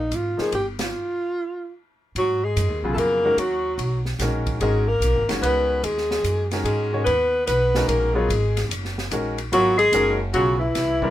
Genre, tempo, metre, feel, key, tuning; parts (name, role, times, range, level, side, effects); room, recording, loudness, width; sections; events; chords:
modal jazz; 147 BPM; 3/4; swing 65% on 8ths; G# dorian; A4 = 440 Hz
mellow alto saxophone; melody; 0.0-11.1 s; Eb4 to B4; -22 LUFS; equal
upright bass; bass; 0.0-11.1 s; F#1 to G#2; -25 LUFS; right 1 dB
open jazz drum kit; drums; 0.1-11.1 s; hi-hat, kick drum, ride cymbal, snare drum; -32 LUFS; left 1 dB
bright concert grand piano; accompaniment; 0.4-0.5, 2.8-11.1 s; C#3 to C#5; -26 LUFS; left 1 dB
warm tenor saxophone; second line; 2.2-11.1 s; E3 to B3; -26 LUFS; left 3 dB
little or no reverb; minimal, uncompressed stereo recording; -19 LUFS; side -13 dB against mid
0.0-2.2 A section; 2.2-11.1 B section
band accent 0.7; stop 0.9-2.2
0.0 Ebadd9; 2.2 G#m9